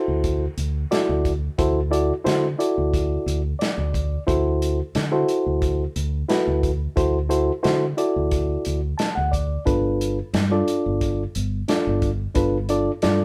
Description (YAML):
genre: straight-eighth soul blues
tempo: 89 BPM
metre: 4/4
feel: straight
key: D mixolydian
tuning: A4 = 440 Hz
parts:
  - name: reed electric piano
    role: accompaniment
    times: 0.0-13.2 s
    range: D4 to A5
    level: -24 LUFS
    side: equal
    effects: none
  - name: fingered electric bass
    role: bass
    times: 0.1-13.2 s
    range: G1 to D3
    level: -27 LUFS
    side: equal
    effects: none
  - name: warm soul drum kit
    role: drums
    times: 0.2-13.2 s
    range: hi-hat, kick drum, snare drum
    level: -28 LUFS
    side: equal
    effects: none
room: moderate studio reverb, RT60 0.5 s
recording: band playing live in one room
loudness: -22 LUFS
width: mono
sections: 0.0-13.2 A section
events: reed electric piano fill 3.3-4.3, 8.7-9.7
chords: 0.0 D7; 9.7 G7